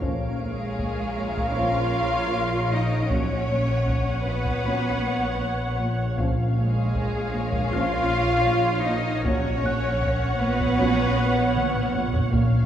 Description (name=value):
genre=cinematic, suspense film score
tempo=78 BPM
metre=4/4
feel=straight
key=Bb phrygian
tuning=A4 = 440 Hz
part: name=muted symphonic violin section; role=melody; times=0.0-12.7 s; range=F5 to F#5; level=-31 LUFS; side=left 1 dB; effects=none
part: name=muted symphonic viola section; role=accompaniment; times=0.0-12.7 s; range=Bb4 to Db5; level=-32 LUFS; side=right 2 dB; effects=none
part: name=dark French horn section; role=sustained chords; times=0.0-12.7 s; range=F3 to Db4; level=-34 LUFS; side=left 2 dB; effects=none
part: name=muted symphonic cello section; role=riff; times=0.0-12.6 s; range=Bb2 to Bb3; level=-31 LUFS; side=right 1 dB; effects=none
part: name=muted symphonic double bass section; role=bass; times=0.0-12.7 s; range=Bb1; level=-28 LUFS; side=equal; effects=none
part: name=swarming drone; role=drone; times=0.0-12.7 s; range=Bb1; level=-34 LUFS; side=equal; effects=built-in reverb
part: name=taiko ensemble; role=drums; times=0.0-12.7 s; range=none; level=-30 LUFS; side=equal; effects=none
part: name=muted symphonic violin section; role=texture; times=0.0-12.7 s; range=Db5 to D7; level=-42 LUFS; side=left 4 dB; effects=none
part: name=muted symphonic violin section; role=second line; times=0.4-11.9 s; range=Ab4 to F5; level=-30 LUFS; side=left 2 dB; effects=none
part: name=muted symphonic cello section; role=bass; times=0.4-11.9 s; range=Ab3 to F4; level=-28 LUFS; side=right 2 dB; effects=none
part: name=music box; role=texture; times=1.2-11.9 s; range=Db5 to F#6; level=-39 LUFS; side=equal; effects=none
room=wet concert hall reverb, RT60 2.2 s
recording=heard from further back in the room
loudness=-21 LUFS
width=side -10 dB against mid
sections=0.0-12.7 A section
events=drum fill 11.6-12.3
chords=0.0 Bbm7; 3.1 Bsus2/Bb; 6.2 Bbm7; 9.3 Bsus2/Bb